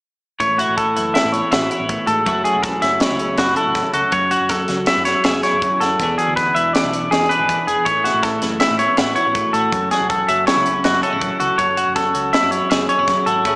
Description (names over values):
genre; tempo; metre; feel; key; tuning
math rock and midwest emo; 161 BPM; 5/4; straight; unclear; A4 = 443 Hz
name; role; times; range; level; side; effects
twelve-string electric guitar; accompaniment; 0.4-13.6 s; E2 to A4; -23 LUFS; equal; analog chorus, slapback echo
twangy electric guitar; arpeggios; 0.4-13.6 s; F#4 to E5; -16 LUFS; equal; analog delay
hollow-body short-scale fingered electric bass; bass; 0.4-13.6 s; E1 to A2; -32 LUFS; equal; none
crisp fusion drum kit; drums; 0.4-13.5 s; hi-hat, kick drum, snare drum; -22 LUFS; equal; none
room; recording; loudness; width
wet lush hall reverb, RT60 1.8 s, small room ambience; big arena sound, small speaker sound; -15 LUFS; side -35 dB against mid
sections
0.4-13.6 A section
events
none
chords
0.4 A6; 2.3 F#m7; 4.1 F#m9; 6.0 E7; 7.9 A6; 9.7 F#m7; 11.6 F#m9